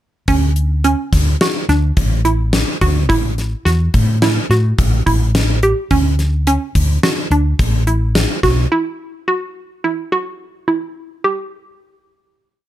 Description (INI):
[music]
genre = progressive instrumental, band music in an uneven meter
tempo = 107 BPM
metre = 5/4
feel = straight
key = unclear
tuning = A4 = 440 Hz
[part]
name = hollow square pluck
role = arpeggios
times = 0.3-11.4 s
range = C#4 to G4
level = -18 LUFS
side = right 2 dB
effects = chorus, plate reverb
[part]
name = woody fretless electric bass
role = bass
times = 0.3-8.7 s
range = A1 to A2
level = -15 LUFS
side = equal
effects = none
[part]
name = gated 80s drum kit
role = drums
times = 0.3-8.6 s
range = hi-hat, kick drum, snare drum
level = -17 LUFS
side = left 1 dB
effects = none
[sound]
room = light reverb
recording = dark, warm production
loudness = -14 LUFS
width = side -13 dB against mid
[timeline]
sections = 0.3-11.5 groove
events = none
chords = 0.3 Dmaj7; 3.1 A5; 5.9 Dmaj7; 8.7 Emadd9